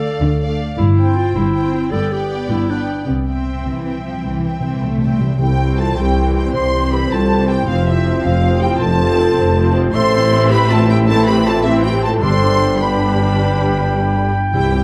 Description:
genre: cinematic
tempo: 105 BPM (dotted quarters)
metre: 12/8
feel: straight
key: C major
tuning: A4 = 442 Hz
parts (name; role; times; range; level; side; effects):
- rich symphonic violin section; melody; 0.0-14.8 s; E5 to C6; -29 LUFS; equal; none
- mellow clarinet; second line; 0.0-14.8 s; C4 to A4; -25 LUFS; equal; none
- warm symphonic violin section; second line; 0.0-14.8 s; C5 to C6; -30 LUFS; equal; none
- warm symphonic viola section; accompaniment; 0.0-14.8 s; E3 to G4; -27 LUFS; equal; none
- dark symphonic double bass section; bass; 0.0-14.8 s; F1 to D2; -22 LUFS; equal; none
- warm symphonic cello section; bass; 0.0-14.8 s; C2 to A3; -23 LUFS; equal; none
- timpani; percussion; 3.1-5.9, 12.2-14.8 s; G2 to C3; -24 LUFS; equal; none
- hollow concert flute; second line; 5.4-14.8 s; E5 to C6; -29 LUFS; equal; none
- clear trombone section; sustained chords; 5.4-14.8 s; C3 to G4; -29 LUFS; equal; none
- mellow French horn section; sustained chords; 5.4-14.8 s; E4 to C5; -24 LUFS; equal; none
- mellow trumpet; stabs; 5.4-14.8 s; C5 to G5; -27 LUFS; equal; none
- mellow tuba; bass; 5.4-14.8 s; F1 to C2; -25 LUFS; equal; none
room: moderate scoring stage reverb, RT60 1.7 s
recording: none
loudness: -16 LUFS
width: mono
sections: 0.0-5.4 A section; 5.4-14.8 A section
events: timpani fill 3.1-5.4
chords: 0.0 Dm; 0.8 C/G; 1.9 G; 3.1 C; 7.7 F; 9.9 Am; 12.2 G

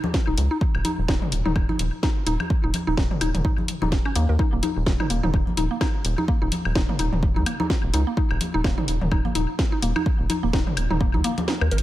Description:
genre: minimal techno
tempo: 127 BPM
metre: 4/4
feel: swing 57% on 16ths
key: unclear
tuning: A4 = 440 Hz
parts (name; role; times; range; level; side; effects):
- electronic congas, woodblock and toms; percussion; 0.0-11.7 s; none; -29 LUFS; left 2 dB; small room ambience, tape echo
- electronic kick drum; drums; 0.1-11.1 s; none; -23 LUFS; equal; overdrive, small room ambience
- garage drum kit; drums; 0.1-11.8 s; hi-hat, snare drum; -29 LUFS; equal; small room ambience
- mallet-like synth pluck; riff; 0.3-11.8 s; Bb3 to Bb4; -28 LUFS; equal; chorus, sidechain pumping, tape echo
- rubbery square bass; bass; 0.3-11.8 s; Eb1 to Eb2; -24 LUFS; equal; sidechain pumping
room: light reverb, digital ambience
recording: none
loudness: -20 LUFS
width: side -14 dB against mid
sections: 0.0-11.8 A section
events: kick drops out 11.5-11.8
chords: none

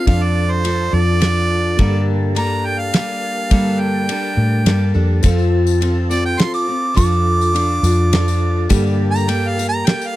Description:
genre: folk rock and heartland rock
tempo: 104 BPM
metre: 3/4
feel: straight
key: G minor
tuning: A4 = 440 Hz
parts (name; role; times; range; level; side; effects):
- clear harmonica; melody; 0.0-10.2 s; C5 to D6; -21 LUFS; right 2 dB; none
- bright reed electric piano; accompaniment; 0.0-10.2 s; Bb3 to A4; -29 LUFS; right 10 dB; fast tremolo
- picked steel-string acoustic guitar; accompaniment; 0.0-10.2 s; G2 to A4; -22 LUFS; left 3 dB; none
- tonewheel organ; sustained chords; 0.0-10.2 s; Bb3 to A5; -29 LUFS; equal; overdrive, slow rotary speaker
- vintage muted fingered electric bass; bass; 0.1-9.8 s; F2 to G3; -17 LUFS; equal; none
- damped 70s drum kit; drums; 0.1-10.0 s; kick drum, ride cymbal, snare drum; -15 LUFS; equal; none
- tambourine; percussion; 5.2-10.1 s; none; -33 LUFS; left 20 dB; none
room: little or no reverb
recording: dry, close 1970s-style studio recording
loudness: -14 LUFS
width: side -16 dB against mid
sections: 0.0-10.2 A section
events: harmonica solo 0.0-10.2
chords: 0.1 Dm/F; 1.8 Gmadd9; 5.2 F; 7.0 Dm/F; 8.7 Gmadd9

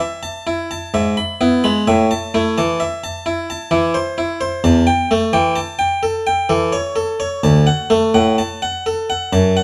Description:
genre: classical, baroque-style suite movement for harpsichord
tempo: 64 BPM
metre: 3/4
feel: rubato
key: D major from 4.6 s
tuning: A4 = 445 Hz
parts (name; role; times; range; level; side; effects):
- harpsichord; solo; 0.0-9.6 s; D2 to B5; -17 LUFS; equal; none
room: moderate stone room reverb, RT60 1.1 s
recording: dark, warm production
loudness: -17 LUFS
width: mono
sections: 0.0-9.6 A section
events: none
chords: 0.0 A5; 0.9 E/G#; 1.9 Am; 4.6 A7/E; 7.4 D (rootless)

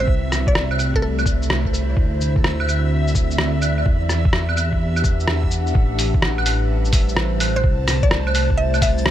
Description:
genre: future garage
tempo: 127 BPM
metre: 4/4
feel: swing 66% on 16ths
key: A dorian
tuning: A4 = 440 Hz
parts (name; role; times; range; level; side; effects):
- mallet-like synth pluck; melody; 0.0-1.1, 7.6-9.1 s; A4 to E5; -27 LUFS; equal; chorus, tape echo
- warbly tape-like pad; sustained chords; 0.0-9.1 s; A2 to F#5; -26 LUFS; equal; chorus, built-in reverb, vintage 12-bit sampler grit, sidechain pumping
- dark detuned saw bass; bass; 0.0-9.1 s; A1 to E2; -21 LUFS; equal; sidechain pumping
- lo-fi sampler-style drum kit; drums; 0.0-9.1 s; claves, hi-hat, rim click, shaker; -23 LUFS; equal; none
- backwards swelling texture; texture; 0.0-9.1 s; E5 to A5; -32 LUFS; right 1 dB; built-in reverb
- electronic kick drum; drums; 0.1-8.9 s; none; -19 LUFS; equal; none
room: light reverb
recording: none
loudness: -16 LUFS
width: side -12 dB against mid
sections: 0.0-5.7 A section; 5.7-9.1 B section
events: none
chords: 0.1 C6; 2.0 D7; 3.9 Em9; 5.7 Am9; 7.6 C6

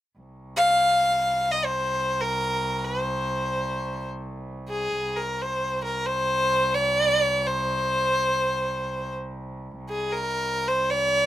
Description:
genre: Arabic maqam ensemble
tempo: free time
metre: none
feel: none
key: C maqam bayati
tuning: A4 = 440 Hz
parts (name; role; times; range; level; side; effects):
- muted cello; drone; 0.2-11.3 s; C2; -33 LUFS; right 1 dB; none
- clear violin; melody; 0.6-11.3 s; Ab4 to F5; -22 LUFS; equal; none
room: moderate studio reverb, RT60 0.5 s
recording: rough home demo mix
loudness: -22 LUFS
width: side -13 dB against mid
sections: 0.2-11.3 A section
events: none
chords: none

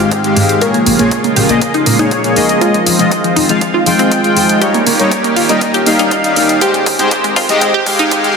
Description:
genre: progressive house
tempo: 120 BPM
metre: 4/4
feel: straight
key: unclear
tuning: A4 = 440 Hz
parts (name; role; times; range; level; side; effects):
- lush unison pad; sustained chords; 0.0-8.4 s; Db3 to G4; -17 LUFS; right 2 dB; chorus, sidechain pumping
- glassy wavetable pluck; arpeggios; 0.0-8.4 s; F3 to Bb4; -16 LUFS; equal; chorus, sidechain pumping, tape echo
- soft supersaw; stabs; 0.0-8.4 s; Ab2 to G5; -13 LUFS; left 2 dB; sidechain pumping, tape echo
- plucky analog bass; bass; 0.0-8.1 s; Eb1 to Bb2; -20 LUFS; right 1 dB; sidechain pumping
- electronic hi-hat; drums; 0.1-8.3 s; none; -18 LUFS; equal; sidechain pumping on hats, small room ambience
- electronic kick drum; drums; 0.1-8.2 s; none; -24 LUFS; right 1 dB; none
room: wet lush hall reverb, RT60 2.1 s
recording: dense, heavily limited modern master, high-pass filter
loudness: -9 LUFS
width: side -5 dB against mid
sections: 0.0-8.4 A section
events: build-up 0.0-8.4; filter sweep on synth arpeggio sound 0.0-8.4; filter sweep on supersaw synth 0.0-8.4; filter sweep 0.0-8.4; drum fill 2.6-8.4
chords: 0.0 Abmaj7; 0.6 Bbm7; 2.6 Fm7; 4.6 Eb7; 6.6 Abmaj7

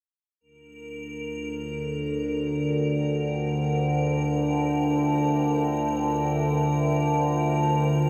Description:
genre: dark ambient drone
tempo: free time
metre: none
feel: none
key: unclear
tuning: A4 = 440 Hz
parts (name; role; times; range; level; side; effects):
- overtone-sweeping drone; drone; 1.0-8.1 s; D2 to D3; -26 LUFS; equal; chorus, built-in reverb
- icy glass pad; texture; 0.8-8.1 s; Bb4; -35 LUFS; equal; chorus, built-in reverb, shimmer reverb
- dark analog pad; sustained chords; 1.6-8.1 s; F4 to G5; -39 LUFS; equal; chorus, shimmer reverb
room: wet cathedral reverb, RT60 5.6 s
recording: none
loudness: -25 LUFS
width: mono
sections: 0.4-8.1 A section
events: fade-in on analog synth pad 0.4-8.1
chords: 0.4 F5

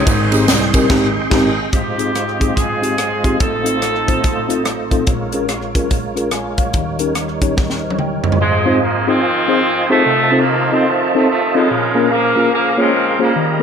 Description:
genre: uptempo gospel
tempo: 144 BPM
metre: 4/4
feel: swing 62% on 8ths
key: Ab major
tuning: A4 = 442 Hz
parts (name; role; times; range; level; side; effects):
- warm horn section; melody; 0.0-4.9, 8.4-13.6 s; C3 to A4; -18 LUFS; equal; tape echo
- mellow tine electric piano; accompaniment; 0.0-13.6 s; A1 to Ab5; -18 LUFS; left 2 dB; medium stereo tremolo
- tonewheel organ; sustained chords; 0.0-13.6 s; G3 to C6; -21 LUFS; right 3 dB; slow rotary speaker, chorus vibrato
- warm concert grand piano; bass; 0.1-1.5 s; Ab1 to C2; -19 LUFS; right 1 dB; none
- crisp fusion drum kit; drums; 0.1-8.4 s; crash cymbal, hi-hat, kick drum, ride cymbal, rim click, snare drum, toms; -18 LUFS; equal; none
- tambourine and handclaps; percussion; 0.1-0.8 s; none; -26 LUFS; right 2 dB; none
room: moderate concert hall reverb, RT60 2.4 s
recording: none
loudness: -13 LUFS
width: side -7 dB against mid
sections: 0.0-1.7 A section; 1.7-8.4 B section; 8.4-13.6 A section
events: band accent 0.9-1.7; drum fill 7.6-8.4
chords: 0.1 Abmaj7; 1.7 Ab6; 3.4 F7/A; 5.1 Bbm7; 6.7 Eb7; 8.4 Ab6; 10.1 F7; 11.7 Bbm7

